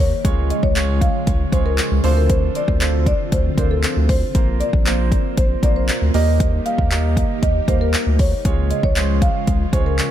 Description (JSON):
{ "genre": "dance-pop", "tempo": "117 BPM", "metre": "4/4", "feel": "straight", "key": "unclear", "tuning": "A4 = 440 Hz", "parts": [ { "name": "marimba with soft mallets", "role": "melody", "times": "0.0-10.1 s", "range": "A4 to F5", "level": "-24 LUFS", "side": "equal", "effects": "tape echo" }, { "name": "string machine, cellos", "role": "sustained chords", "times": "0.0-10.1 s", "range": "Db3 to G4", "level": "-26 LUFS", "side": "left 1 dB", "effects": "ensemble chorus, sidechain pumping" }, { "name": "saturated sub bass", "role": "bass", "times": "0.0-10.0 s", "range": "Bb1 to Eb2", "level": "-19 LUFS", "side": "equal", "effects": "sidechain pumping" }, { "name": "clear grand piano", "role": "accompaniment", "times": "0.2-10.1 s", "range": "Ab3 to F5", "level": "-27 LUFS", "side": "right 8 dB", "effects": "sidechain pumping, tape echo" }, { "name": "deep house drum kit", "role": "drums", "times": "0.2-10.1 s", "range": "handclaps, hi-hat, kick drum", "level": "-19 LUFS", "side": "equal", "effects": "none" } ], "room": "digital ambience", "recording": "echo-heavy mix", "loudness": "-15 LUFS", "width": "side -11 dB against mid", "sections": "0.0-10.1 A section", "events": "none", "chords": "0.2 Db; 2.0 Dm7; 4.3 Bbsus2; 6.1 Eb; 8.5 Db" }